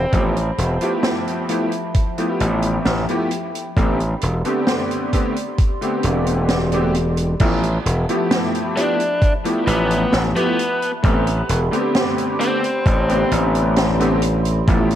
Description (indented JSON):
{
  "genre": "vaporwave",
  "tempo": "66 BPM",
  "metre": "4/4",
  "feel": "straight",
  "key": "A minor",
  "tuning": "A4 = 440 Hz",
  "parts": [
    { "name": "biting lead guitar", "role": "melody", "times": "0.0-0.2, 8.8-13.3 s", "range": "B3 to D4", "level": "-24 LUFS", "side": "left 1 dB", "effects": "overdrive, tape echo" },
    { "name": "warbly tape-like pad", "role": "sustained chords", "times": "0.0-15.0 s", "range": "F3 to C6", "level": "-28 LUFS", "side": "equal", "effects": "chorus, built-in reverb" },
    { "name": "gritty slap bass", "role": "bass", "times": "0.0-15.0 s", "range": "E1 to A1", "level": "-19 LUFS", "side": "equal", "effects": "overdrive" },
    { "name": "clear electric grand piano", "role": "accompaniment", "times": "0.1-14.9 s", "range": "D3 to G4", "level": "-22 LUFS", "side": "equal", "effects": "ensemble chorus, vintage 12-bit sampler grit, tape echo" },
    { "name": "electronic kick drum", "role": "drums", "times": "0.1-14.9 s", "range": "none", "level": "-17 LUFS", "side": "equal", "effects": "none" },
    { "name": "open jazz drum kit", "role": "drums", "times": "0.1-15.0 s", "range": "crash cymbal, hi-hat, snare drum", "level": "-24 LUFS", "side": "right 1 dB", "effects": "none" }
  ],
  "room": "light reverb, small room ambience",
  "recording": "cassette tape",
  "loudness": "-16 LUFS",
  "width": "side -11 dB against mid",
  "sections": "0.0-7.4 A section; 7.4-15.0 B section",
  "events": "none",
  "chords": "0.1 G13; 3.8 Am11; 7.4 G13; 11.0 Am11"
}